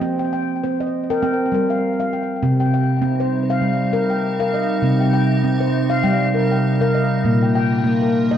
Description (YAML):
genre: world meditative, meditative tuned percussion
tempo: 100 BPM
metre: 4/4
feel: swing 56% on 16ths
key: C minor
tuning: A4 = 437 Hz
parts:
  - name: handpan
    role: arpeggios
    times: 0.0-8.4 s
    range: Bb2 to G5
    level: -17 LUFS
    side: equal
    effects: ping-pong delay
  - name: icy glass pad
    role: sustained chords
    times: 3.0-8.4 s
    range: C3 to Eb4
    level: -21 LUFS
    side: right 2 dB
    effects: chorus, built-in reverb
room: wet echo chamber reverb, RT60 2.2 s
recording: worn, warbling old tape, cassette tape, warbly pitch drift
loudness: -16 LUFS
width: side -9 dB against mid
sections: 0.0-2.4 A section; 2.4-8.4 B section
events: none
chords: 0.0 Cm; 7.2 Bb